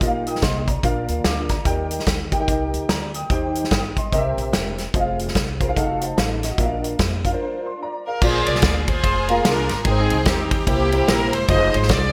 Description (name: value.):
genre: uptempo gospel.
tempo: 146 BPM.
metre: 4/4.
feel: swing 62% on 8ths.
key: unclear.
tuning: A4 = 444 Hz.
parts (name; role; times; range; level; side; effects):
warm grand piano; accompaniment; 0.0-12.0 s; Ab2 to Eb6; -26 LUFS; equal; ensemble chorus.
upright bass; bass; 0.0-12.1 s; E1 to F2; -28 LUFS; equal; none.
natural country drum kit; drums; 0.0-12.0 s; crash cymbal, hi-hat, kick drum, ride cymbal, snare drum; -24 LUFS; equal; gated reverb.
rich studio string section; melody; 8.1-12.1 s; Bb3 to Eb5; -24 LUFS; equal; digital delay.
room: light reverb, studio ambience.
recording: bright 1980s-style digital production.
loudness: -21 LUFS.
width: mono.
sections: 0.0-8.2 A section; 8.2-12.1 B section.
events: break 7.4-8.2.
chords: 0.0 Bbsus4; 0.8 Bb; 1.7 Eb; 3.3 Cm/Eb; 4.1 C7; 4.9 Fm; 5.8 F7b9; 6.6 Bb; 8.2 Bb7; 9.9 Abmaj7; 10.7 C7; 11.5 Fm7.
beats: | 0.01 0.42 0.83 1.24 | 1.66 2.07 2.48 2.89 | 3.30 3.71 4.12 4.53 | 4.94 5.35 5.76 6.17 | 6.58 6.99 7.40 7.81 | 8.22 8.63 9.04 9.45 | 9.86 10.26 10.67 11.08 | 11.49 11.90.